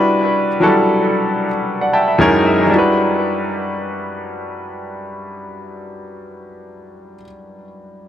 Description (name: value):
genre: amapiano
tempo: free time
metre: none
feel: none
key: E minor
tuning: A4 = 440 Hz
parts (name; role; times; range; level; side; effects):
- clear grand piano; accompaniment; 0.0-8.1 s; F#2 to A5; -15 LUFS; equal; dub echo
room: wet spring reverb, RT60 1.7 s, small room ambience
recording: echo-heavy mix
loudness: -13 LUFS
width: side -10 dB against mid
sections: 0.0-2.7 A section; 2.7-6.9 B section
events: grand piano fill 1.7-2.7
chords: 0.0 Em9; 2.2 F#13; 2.7 Em9